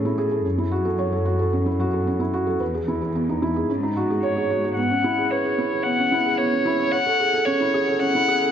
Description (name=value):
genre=piano and strings electronica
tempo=111 BPM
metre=4/4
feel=straight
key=C# minor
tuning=A4 = 439 Hz
part: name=felt-muted upright piano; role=riff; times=0.0-8.5 s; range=B3 to C#5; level=-22 LUFS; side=right 1 dB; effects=tape echo
part: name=warm symphonic cello section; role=bass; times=0.0-4.7 s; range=E2 to A2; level=-26 LUFS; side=left 1 dB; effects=none
part: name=warm violin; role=melody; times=4.2-8.5 s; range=C#5 to F#5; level=-21 LUFS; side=left 1 dB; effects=low-pass filter
room=moderate concert hall reverb, RT60 2.4 s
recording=nothing above 7.7 kHz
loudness=-20 LUFS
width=side -8 dB against mid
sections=0.0-4.8 A section; 4.8-8.5 B section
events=build-up 4.8-8.5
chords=0.4 F#m7; 2.6 Emaj7; 3.7 G#7sus4; 4.8 C#m7; 6.9 Amaj7